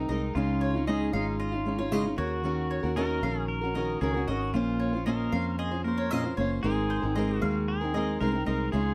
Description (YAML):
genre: pop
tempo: 115 BPM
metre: 4/4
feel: straight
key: unclear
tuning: A4 = 438 Hz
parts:
  - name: pedal steel guitar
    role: second line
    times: 0.0-8.9 s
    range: Eb4 to Bb4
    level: -38 LUFS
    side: equal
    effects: none
  - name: fingerpicked steel-string acoustic guitar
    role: accompaniment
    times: 0.0-8.9 s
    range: Bb2 to C5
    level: -31 LUFS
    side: equal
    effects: none
  - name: fingered electric bass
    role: bass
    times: 0.0-8.9 s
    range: Gb1 to F2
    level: -35 LUFS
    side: equal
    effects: none
  - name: mandolin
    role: arpeggios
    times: 0.1-8.6 s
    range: C5 to F5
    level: -40 LUFS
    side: equal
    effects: slapback echo
room: light reverb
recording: close, detailed microphones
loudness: -29 LUFS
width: mono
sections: 0.0-8.9 A section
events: none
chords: 0.4 Dbadd9; 2.2 Ebm7; 4.5 Bbmadd9; 6.6 Abadd9